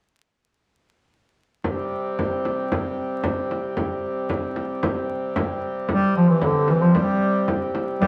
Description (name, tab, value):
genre	medieval dance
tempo	113 BPM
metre	2/4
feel	straight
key	C major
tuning	A4 = 440 Hz
part	frame drum	percussion	1.6-8.1 s	none	-29 LUFS	equal	none
part	pedal harmonium	drone	1.7-8.1 s	C3 to G3	-29 LUFS	equal	none
part	warm bass clarinet	melody	5.9-8.1 s	D3 to G3	-20 LUFS	equal	none
room	wet studio reverb, RT60 0.8 s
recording	vinyl crackle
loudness	-23 LUFS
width	mono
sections	1.7-5.9 A section; 5.9-8.1 B section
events	none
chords	none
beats	| 1.65 2.18 | 2.71 3.24 | 3.77 4.30 | 4.83 5.37 | 5.89 6.42 | 6.96 7.48 | 8.01